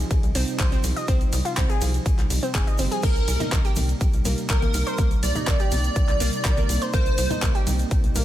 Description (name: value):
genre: progressive house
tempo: 123 BPM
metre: 4/4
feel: straight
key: C minor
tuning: A4 = 435 Hz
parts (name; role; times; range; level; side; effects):
- warm analog pad; sustained chords; 0.0-8.2 s; C3 to Eb4; -32 LUFS; right 2 dB; chorus, vintage 12-bit sampler grit, sidechain pumping
- tight sequencer bass; bass; 0.0-8.2 s; G1 to C2; -25 LUFS; equal; tube saturation, sidechain pumping
- egg shaker; percussion; 0.0-8.2 s; none; -38 LUFS; right 4 dB; none
- deep house drum kit; drums; 0.1-8.2 s; crash cymbal, handclaps, hi-hat, ride cymbal; -30 LUFS; equal; none
- electronic kick drum; drums; 0.1-8.0 s; none; -22 LUFS; equal; none
- analog pluck; arpeggios; 0.4-8.2 s; Bb3 to Eb5; -30 LUFS; right 1 dB; chorus, sidechain pumping, digital delay
- plucky unison lead; melody; 3.0-7.6 s; Bb4 to D5; -30 LUFS; right 1 dB; analog chorus, dub echo
- airy dreamy lead; second line; 3.0-7.6 s; Bb4 to D5; -34 LUFS; right 1 dB; chorus, sidechain pumping, digital delay
- congas; percussion; 3.0-8.2 s; none; -34 LUFS; left 3 dB; none
room: little or no reverb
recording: none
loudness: -20 LUFS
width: side -13 dB against mid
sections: 0.0-8.2 A section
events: none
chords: 0.0 Ab6/C; 3.0 Cm7